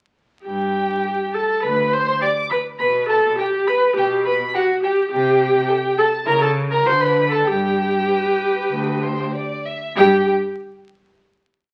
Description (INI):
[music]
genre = quick classical-period movement for string quartet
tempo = 95-105 BPM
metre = 4/4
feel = straight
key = G major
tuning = A4 = 440 Hz
[part]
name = warm violin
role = melody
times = 0.5-10.3 s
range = F#5 to D6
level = -27 LUFS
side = equal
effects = none
[part]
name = warm viola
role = accompaniment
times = 0.5-10.3 s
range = F#4 to D5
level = -20 LUFS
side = equal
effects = none
[part]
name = rich cello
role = bass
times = 0.5-10.3 s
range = D2 to D3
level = -28 LUFS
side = equal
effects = none
[part]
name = warm violin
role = second line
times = 1.0-10.3 s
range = E4 to E5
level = -30 LUFS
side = equal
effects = none
[sound]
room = wet large studio reverb, RT60 0.8 s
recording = very old 78 rpm record, vinyl crackle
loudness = -19 LUFS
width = mono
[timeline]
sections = 0.5-10.0 A section; 10.0-11.7 final note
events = none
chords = 0.5 G5; 2.8 G/B; 5.1 Am7/C; 6.3 C#5; 6.9 D5; 7.5 G; 10.0 N.C.